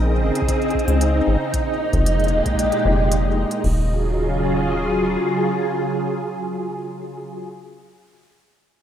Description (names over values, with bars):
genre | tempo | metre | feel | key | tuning
IDM | 114 BPM | 4/4 | straight | Eb minor | A4 = 441 Hz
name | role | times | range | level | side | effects
soft string machine | sustained chords | 0.0-7.5 s | Bb2 to Ab4 | -21 LUFS | equal | phaser, ensemble chorus
deep acid bass | bass | 0.0-5.2 s | Eb1 to Db2 | -20 LUFS | equal | none
flickering grainy texture | texture | 0.0-3.7 s | Eb4 to Eb5 | -30 LUFS | right 2 dB | built-in reverb
electro analog drum machine | drums | 0.4-3.8 s | crash cymbal, kick drum | -24 LUFS | equal | none
electronic hi-hat | drums | 0.4-3.6 s | none | -31 LUFS | right 2 dB | none
room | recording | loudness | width
moderate studio reverb, RT60 0.5 s | rough home demo mix | -18 LUFS | side -10 dB against mid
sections
0.0-3.6 A section; 3.6-7.9 B section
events
none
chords
0.0 Bbm11; 1.5 Fm11; 3.6 Ebm11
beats
0.48 1.01 | 1.54 2.06 2.59 3.12 | 3.64 4.17 4.70 5.22 | 5.75 6.27 6.80 7.33